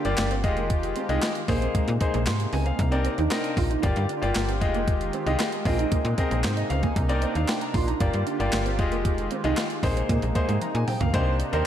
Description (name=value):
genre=early-eighties boogie funk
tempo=115 BPM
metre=4/4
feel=straight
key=C minor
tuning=A4 = 440 Hz
part: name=bright grand piano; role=accompaniment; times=0.0-11.7 s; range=Ab3 to C6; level=-28 LUFS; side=left 2 dB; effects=none
part: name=warm analog pad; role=sustained chords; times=0.0-11.7 s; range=C3 to G4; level=-32 LUFS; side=equal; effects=chorus, tremolo
part: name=mellow electric guitar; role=riff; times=0.0-11.1 s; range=Ab3 to F4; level=-33 LUFS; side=right 7 dB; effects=ensemble chorus
part: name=clean 12-bit digital drum machine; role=drums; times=0.0-11.7 s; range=handclaps, hi-hat, kick drum, snare drum, toms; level=-27 LUFS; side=equal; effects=none
part: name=slap-like FM bass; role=bass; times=0.1-11.6 s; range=F1 to Bb2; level=-26 LUFS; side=equal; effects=none
part: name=mellow horn section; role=second line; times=11.5-11.6 s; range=Bb3 to Bb4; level=-26 LUFS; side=right 8 dB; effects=none
room=moderate lush hall reverb, RT60 1.8 s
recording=dreamy mix soaked in reverb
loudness=-22 LUFS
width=side -10 dB against mid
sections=0.0-11.1 A section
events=drum fill 10.6-11.1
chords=0.4 Fm9; 1.5 Bb9sus4; 2.8 Cm9; 3.8 Gm7; 4.6 Fm9; 5.7 Bb9sus4; 7.0 Cm9; 8.0 Gm7; 8.8 Fm9; 9.8 Bb9sus4; 11.1 Cm9